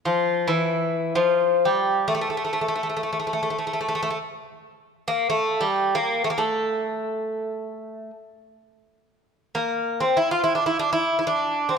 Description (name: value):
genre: Turkish makam ensemble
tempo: free time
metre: none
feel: none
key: A makam kurdi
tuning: A4 = 439 Hz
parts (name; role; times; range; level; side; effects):
- Greek bouzouki; solo; 0.1-11.8 s; E3 to F4; -21 LUFS; equal; none
room: moderate concert hall reverb, RT60 2.0 s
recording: none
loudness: -21 LUFS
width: side -6 dB against mid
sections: 0.0-11.8 A section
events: none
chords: none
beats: free time